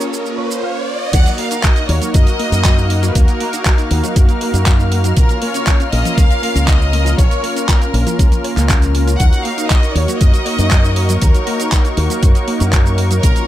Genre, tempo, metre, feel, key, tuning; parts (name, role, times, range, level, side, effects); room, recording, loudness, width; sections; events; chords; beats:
nu-disco, nu disco; 119 BPM; 4/4; straight; Eb minor; A4 = 443 Hz
rich studio violin section; melody; 0.0-13.5 s; Bb4 to Gb5; -23 LUFS; equal; tape echo
warm analog pad; accompaniment; 0.0-13.5 s; Bb3 to Bb4; -21 LUFS; equal; chorus, cassette tape, sidechain pumping, slapback echo
dark chamber string section; sustained chords; 0.0-13.5 s; Db5 to F6; -28 LUFS; left 1 dB; sidechain pumping
direct-recorded clean electric guitar; riff; 0.0-1.1 s; Db4 to F5; -27 LUFS; right 3 dB; ensemble chorus, low-pass filter, slapback echo
pop drum kit; drums; 0.0-13.5 s; crash cymbal, handclaps, hi-hat, shaker; -22 LUFS; right 1 dB; overdrive
riser; sound effects; 0.0-1.1 s; -24 LUFS; right 1 dB
wide unison pluck; arpeggios; 1.1-13.4 s; Db3 to Db5; -27 LUFS; left 2 dB; sidechain pumping, tape echo
fingered electric bass with an envelope filter; bass; 1.1-13.3 s; Bb1 to Gb2; -16 LUFS; equal; tube saturation
electronic kick drum; drums; 1.1-13.3 s; -12 LUFS; equal; overdrive
digital ambience; -12 LUFS; side -13 dB against mid
0.0-1.1 A section; 1.1-13.5 B section
riser 0.0-1.1; clean electric guitar fill 0.1-1.1; drop 1.1-13.5
0.0 Bbm; 1.1 Ebm; 5.2 Bbm; 9.2 Ebm
0.12 0.63 | 1.13 1.64 2.14 2.65 | 3.15 3.65 4.16 4.66 | 5.17 5.67 6.17 6.68 | 7.18 7.69 8.19 8.70 | 9.20 9.71 10.21 10.71 | 11.22 11.72 12.23 12.73 | 13.23